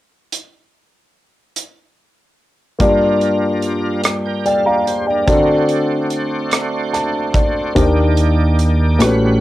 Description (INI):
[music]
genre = slow gospel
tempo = 48 BPM (dotted quarters)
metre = 6/8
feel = straight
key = G minor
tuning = A4 = 445 Hz
[part]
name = modern studio drum kit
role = drums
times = 0.3-9.2 s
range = hi-hat, kick drum, rim click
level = -19 LUFS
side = right 1 dB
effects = cassette tape
[part]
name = warm grand piano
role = accompaniment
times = 2.8-9.4 s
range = G2 to Bb5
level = -16 LUFS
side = left 1 dB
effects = cassette tape, plate reverb
[part]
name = bright tonewheel organ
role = sustained chords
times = 2.8-9.4 s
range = Eb3 to G5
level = -22 LUFS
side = right 3 dB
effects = slow rotary speaker, overdrive, chorus vibrato, cassette tape, plate reverb
[part]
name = fingered electric bass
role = bass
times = 7.8-9.4 s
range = A1 to Eb2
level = -14 LUFS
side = equal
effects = none
[sound]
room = light reverb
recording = home recording on cassette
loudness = -13 LUFS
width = side -16 dB against mid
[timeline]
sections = 0.3-2.8 A section; 2.8-9.4 B section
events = grand piano fill 6.5-7.8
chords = 0.3 N.C.; 2.8 Gm7; 5.3 D7; 7.8 Ebmaj7